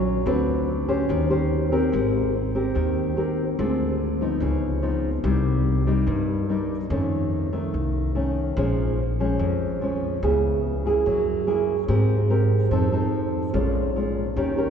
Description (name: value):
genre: bossa nova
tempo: 145 BPM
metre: 4/4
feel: straight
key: Ab major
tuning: A4 = 441 Hz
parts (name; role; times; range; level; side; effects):
- nylon-string guitar; accompaniment; 0.0-14.7 s; F2 to C5; -23 LUFS; equal; none
- upright bass; bass; 0.0-14.7 s; Ab1 to Ab2; -25 LUFS; equal; none
room: wet cathedral reverb, RT60 4.5 s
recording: recorded in a church or concert hall, nothing above 8.0 kHz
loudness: -21 LUFS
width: side -7 dB against mid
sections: 0.0-1.9 A section; 1.9-14.7 B section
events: none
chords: 0.3 D6; 1.1 Eb6; 1.9 Abmaj9; 3.6 Dm7b5; 4.4 Db9; 5.2 Cm7; 6.9 F7b13; 8.6 Bbm7; 10.2 Dbm7; 11.1 Gb9; 11.9 Abmaj9; 12.7 F7; 13.5 Bbm7